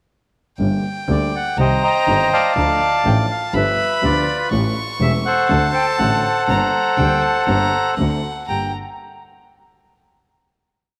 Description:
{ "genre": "tango", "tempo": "122 BPM", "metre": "4/4", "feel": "rubato", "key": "G harmonic minor", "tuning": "A4 = 440 Hz", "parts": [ { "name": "bright violin", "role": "second line", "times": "0.6-8.7 s", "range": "F#5 to C#6", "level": "-27 LUFS", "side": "equal", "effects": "tape echo" }, { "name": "dark upright piano", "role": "accompaniment", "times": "0.6-8.7 s", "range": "E1 to A4", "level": "-26 LUFS", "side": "equal", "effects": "none" }, { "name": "clear double bass", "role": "bass", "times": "0.6-8.7 s", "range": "E1 to D2", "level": "-24 LUFS", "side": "equal", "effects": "none" }, { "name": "bandoneon", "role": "melody", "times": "1.1-8.7 s", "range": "F4 to Bb5", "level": "-20 LUFS", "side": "equal", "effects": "none" } ], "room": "wet spring reverb, RT60 2.5 s", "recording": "none", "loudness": "-18 LUFS", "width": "mono", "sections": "0.6-8.5 A section; 8.5-10.5 final chord", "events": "none", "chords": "0.6 Gm; 1.6 Cm; 2.6 Dm; 3.5 G7; 4.5 A7; 5.5 D7; 6.5 Gm; 8.0 D7; 8.5 Gm", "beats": "| 0.59 1.09 1.58 2.07 | 2.56 3.05 3.54 4.03 | 4.51 5.00 5.49 5.99 | 6.48 6.98 7.47 7.98 | 8.48" }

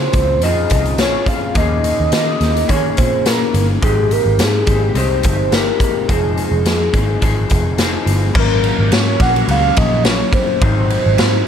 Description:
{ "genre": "indie pop, bedroom pop", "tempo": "106 BPM", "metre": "4/4", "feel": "swing 55% on 16ths", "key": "Ab major", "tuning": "A4 = 442 Hz", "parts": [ { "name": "warbly nostalgic lead", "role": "melody", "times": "0.0-11.5 s", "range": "Ab4 to Gb5", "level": "-18 LUFS", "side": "right 1 dB", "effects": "wide subtle chorus, ping-pong delay" }, { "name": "electric guitar through a small old amp", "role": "accompaniment", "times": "0.0-11.5 s", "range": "Gb2 to Ab4", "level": "-21 LUFS", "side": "left 5 dB", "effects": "analog chorus, warbly pitch drift" }, { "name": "vintage muted picked electric bass", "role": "bass", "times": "0.0-11.4 s", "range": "F1 to Eb3", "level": "-18 LUFS", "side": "equal", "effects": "none" }, { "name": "raw garage drum kit", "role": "drums", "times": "0.1-11.3 s", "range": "crash cymbal, hi-hat, kick drum, ride cymbal, snare drum", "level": "-17 LUFS", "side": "equal", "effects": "none" } ], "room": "little or no reverb", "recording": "none", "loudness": "-13 LUFS", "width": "side -8 dB against mid", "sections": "0.0-8.4 A section; 8.4-11.5 B section", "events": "none", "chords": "0.0 Dbmaj7; 1.6 Eb7sus4; 3.8 Abmaj7; 6.1 Fm7; 8.4 Gb/Ab; 10.6 Ab7", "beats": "0.43 0.99 | 1.56 2.12 2.69 3.26 | 3.82 4.39 4.96 5.52 | 6.09 6.65 7.22 7.79 | 8.35 8.92 9.48 10.05 | 10.62 11.18" }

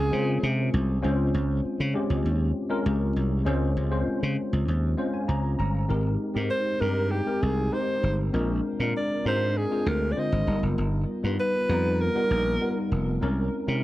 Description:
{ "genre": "polished 1980s jazz-funk pop", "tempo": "98 BPM", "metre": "4/4", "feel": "straight", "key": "unclear", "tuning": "A4 = 440 Hz", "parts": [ { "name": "breathy alto saxophone", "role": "melody", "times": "0.0-0.7, 6.5-12.9 s", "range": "G4 to Eb5", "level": "-29 LUFS", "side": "equal", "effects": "tape echo" }, { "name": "tine electric piano", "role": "accompaniment", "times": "0.0-13.8 s", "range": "D3 to Bb5", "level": "-28 LUFS", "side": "left 1 dB", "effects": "ensemble chorus" }, { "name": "slap bass", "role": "bass", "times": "0.0-13.8 s", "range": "F1 to Db3", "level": "-25 LUFS", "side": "equal", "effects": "none" } ], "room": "light reverb", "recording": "dry, close 1970s-style studio recording", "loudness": "-23 LUFS", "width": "side -16 dB against mid", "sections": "0.0-1.0 A section; 1.0-5.9 B section; 5.9-13.8 C section", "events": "tine electric piano fill 4.7-5.9", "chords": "0.0 Dbmaj7; 5.9 Abmaj9; 8.3 Bb9; 10.5 G7alt; 13.2 C7b9b13", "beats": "0.43 | 1.04 1.65 2.25 2.86 | 3.47 4.08 4.68 5.29 | 5.90 6.51 7.12 7.73 | 8.34 8.95 9.56 10.17 | 10.78 11.39 12.00 12.61 | 13.22 13.84" }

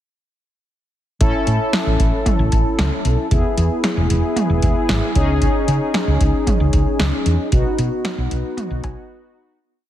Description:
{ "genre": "synth-pop", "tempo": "114 BPM", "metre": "4/4", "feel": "straight", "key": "unclear", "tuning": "A4 = 440 Hz", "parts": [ { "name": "mellow synth brass", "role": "accompaniment", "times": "1.2-9.6 s", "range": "B3 to A4", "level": "-21 LUFS", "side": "left 1 dB", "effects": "chorus" }, { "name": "woody fretless electric bass", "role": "bass", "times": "1.2-8.9 s", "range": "E1 to C#3", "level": "-18 LUFS", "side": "equal", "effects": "none" }, { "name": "electro analog drum machine", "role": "drums", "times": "1.2-9.0 s", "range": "cowbell, hi-hat, kick drum, snare drum, toms", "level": "-20 LUFS", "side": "equal", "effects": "none" } ], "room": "light reverb", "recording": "heavily compressed radio sound", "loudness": "-16 LUFS", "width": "side -12 dB against mid", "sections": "1.2-9.6 pre-chorus", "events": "fade-out 7.5-9.6; break 9.1-9.6", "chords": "1.2 A; 3.3 E; 5.2 C#sus2; 7.5 B", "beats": "| 1.21 1.73 2.26 2.79 | 3.31 3.84 4.36 4.89 | 5.42 5.94 6.47 7.00 | 7.52 8.05 8.57 9.10" }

